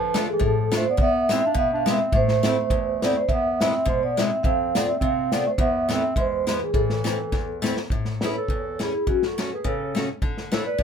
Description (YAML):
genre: alpine folk, alpine dance band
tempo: 104 BPM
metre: 2/4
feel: swing 55% on 8ths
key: A harmonic minor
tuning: A4 = 437 Hz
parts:
  - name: vibraphone with soft mallets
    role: melody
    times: 0.0-10.8 s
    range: F#4 to F5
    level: -24 LUFS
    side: right 1 dB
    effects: none
  - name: warm clarinet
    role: second line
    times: 0.0-10.8 s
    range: E3 to B4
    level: -29 LUFS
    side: right 5 dB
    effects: none
  - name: picked steel-string acoustic guitar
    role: accompaniment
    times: 0.0-10.8 s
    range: E2 to F#4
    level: -27 LUFS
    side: left 3 dB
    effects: none
  - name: unplugged drum kit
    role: drums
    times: 0.1-10.8 s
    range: hi-hat, kick drum, snare drum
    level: -26 LUFS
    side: equal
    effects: none
room: moderate small room ambience, RT60 0.5 s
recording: minimal, uncompressed stereo recording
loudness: -20 LUFS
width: side -7 dB against mid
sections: 0.0-7.9 A section; 7.9-10.8 B section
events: drum fill 7.3-7.9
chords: 0.0 Dm; 1.0 E; 2.1 Am; 3.3 E; 4.4 F; 5.6 Esus4; 6.2 E; 6.7 Am; 7.9 A; 9.1 F#m; 10.2 Dsus2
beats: 0.41 | 0.98 1.55 | 2.12 2.70 | 3.29 3.87 | 4.44 5.02 | 5.59 6.16 | 6.74 7.33 | 7.91 8.49 | 9.07 9.65 | 10.22 10.79